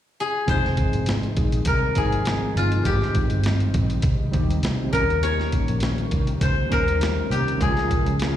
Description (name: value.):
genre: indie pop, bedroom pop.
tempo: 101 BPM.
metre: 4/4.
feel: swing 55% on 16ths.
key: unclear.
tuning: A4 = 441 Hz.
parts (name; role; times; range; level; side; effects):
koto; melody; 0.2-8.4 s; F4 to Db5; -25 LUFS; left 2 dB; lush chorus, slapback echo, tape echo.
mellow electric guitar; accompaniment; 0.5-8.4 s; F2 to Bb4; -29 LUFS; left 4 dB; ensemble chorus, warbly pitch drift.
warbly lo-fi synth keys; accompaniment; 0.5-8.4 s; F3 to Bb4; -31 LUFS; right 6 dB; chorus, slapback echo.
vintage muted picked electric bass; bass; 0.5-8.4 s; F1 to Eb2; -24 LUFS; equal; none.
boom bap sampler-style drum kit; drums; 0.5-8.4 s; hi-hat, kick drum, snare drum; -25 LUFS; equal; none.
room: little or no reverb.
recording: live gig heard through the venue's PA, recital hall reverb.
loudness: -20 LUFS.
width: side -11 dB against mid.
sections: 0.5-8.4 A section.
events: none.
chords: 0.5 Fm7; 2.9 Abmaj7; 4.9 Eb7; 7.6 Bbm7.